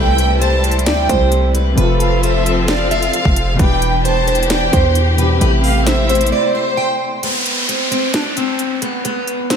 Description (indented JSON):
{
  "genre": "hip hop, trap",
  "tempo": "132 BPM",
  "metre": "4/4",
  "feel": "half-time",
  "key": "A minor",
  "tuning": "A4 = 440 Hz",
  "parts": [
    { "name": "picked plugged-in steel-string acoustic guitar", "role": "melody", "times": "0.0-9.6 s", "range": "B3 to G5", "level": "-19 LUFS", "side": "right 1 dB", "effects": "wide subtle chorus" },
    { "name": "warm studio violin section", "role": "second line", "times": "0.0-7.2 s", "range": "C5 to A5", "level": "-21 LUFS", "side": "right 1 dB", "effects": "analog delay" },
    { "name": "clear grand piano", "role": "accompaniment", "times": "0.0-7.3 s", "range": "B2 to C5", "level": "-23 LUFS", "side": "left 1 dB", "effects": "lush chorus" },
    { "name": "warm symphonic string section", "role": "sustained chords", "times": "0.0-7.2 s", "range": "B2 to A4", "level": "-21 LUFS", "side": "left 2 dB", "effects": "none" },
    { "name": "hard-hitting 808-style bass", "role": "bass", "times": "0.0-6.3 s", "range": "E1 to E2", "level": "-16 LUFS", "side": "equal", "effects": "none" },
    { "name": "trap drum kit", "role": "drums", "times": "0.2-9.6 s", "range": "hi-hat, kick drum, snare drum", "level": "-19 LUFS", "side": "equal", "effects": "none" },
    { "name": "downlifter", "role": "sound effects", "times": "7.2-9.6 s", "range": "none", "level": "-20 LUFS", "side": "equal", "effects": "none" }
  ],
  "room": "moderate lush hall reverb, RT60 1.8 s, small room ambience",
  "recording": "dreamy mix soaked in reverb",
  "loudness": "-13 LUFS",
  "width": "side -7 dB against mid",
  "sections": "0.0-7.2 A section; 7.2-9.6 B section",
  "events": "break 6.3-7.2, 7.2-9.6",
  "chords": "0.0 C6; 1.8 F; 3.6 Em7; 5.4 Am7; 7.2 N.C."
}